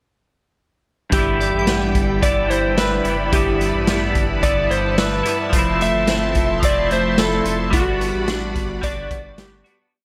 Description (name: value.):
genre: dream pop.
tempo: 109 BPM.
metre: 4/4.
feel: straight.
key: G major.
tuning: A4 = 440 Hz.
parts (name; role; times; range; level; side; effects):
electric slide guitar; melody; 1.1-9.8 s; F#4 to E5; -24 LUFS; equal; tape echo.
clean electric guitar; accompaniment; 1.1-10.0 s; G2 to F#4; -27 LUFS; equal; tremolo, analog chorus.
string machine, violas; sustained chords; 1.1-9.9 s; F3 to C6; -29 LUFS; equal; ensemble chorus.
semi-hollow electric guitar; arpeggios; 1.1-10.0 s; G2 to F#4; -27 LUFS; equal; subtle chorus, tape echo.
saturated sub bass; bass; 1.1-9.6 s; F1 to A1; -28 LUFS; equal; none.
raw garage drum kit; drums; 1.1-9.8 s; hi-hat, kick drum, snare drum; -24 LUFS; equal; none.
shimmering bell with halo; texture; 1.4-2.2 s; D5 to G5; -37 LUFS; equal; ensemble chorus, phaser, tape echo.
room: light reverb, studio reverb.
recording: none.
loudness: -19 LUFS.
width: mono.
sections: 1.1-9.9 A section.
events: fade-out 7.7-9.9.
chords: 1.1 G6; 5.5 Fmaj7; 7.7 Gmaj7.